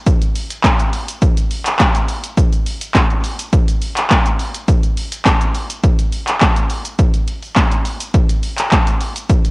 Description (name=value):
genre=pop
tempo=104 BPM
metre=4/4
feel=straight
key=none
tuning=none
part: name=punchy analog drum machine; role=drums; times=0.1-9.5 s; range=handclaps, hi-hat, kick drum, shaker, snare drum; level=-13 LUFS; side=equal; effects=cassette tape
room=moderate spring reverb, RT60 1.3 s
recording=home recording on cassette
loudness=-13 LUFS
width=side -26 dB against mid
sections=0.0-9.5 A section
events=none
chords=none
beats=| 0.07 0.64 1.22 1.80 | 2.37 2.95 3.53 4.10 | 4.68 5.26 5.83 6.41 | 6.99 7.57 8.14 8.72 | 9.30